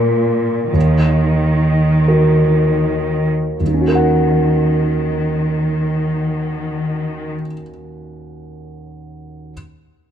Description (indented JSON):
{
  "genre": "cinematic, emotional film score for orchestra",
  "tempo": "38-51 BPM (dotted quarters)",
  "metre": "6/8",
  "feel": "rubato",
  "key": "Eb minor",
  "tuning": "A4 = 440 Hz",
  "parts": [
    { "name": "dark baby grand piano", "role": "accompaniment", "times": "0.0-9.5 s", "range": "Eb2 to Gb5", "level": "-18 LUFS", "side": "right 1 dB", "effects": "none" },
    { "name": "warm studio cello section", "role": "bass", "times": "0.0-7.3 s", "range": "Bb2 to Eb3", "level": "-17 LUFS", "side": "equal", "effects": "none" }
  ],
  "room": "light reverb",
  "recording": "close, detailed microphones",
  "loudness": "-14 LUFS",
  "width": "side -9 dB against mid",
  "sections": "0.0-3.6 A section; 3.6-6.6 B section",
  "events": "slowing down 0.0-3.6",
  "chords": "0.0 Bb5; 0.7 Ebm; 3.6 Ebm7",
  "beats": "| 0.74 2.08 | 3.60 5.08"
}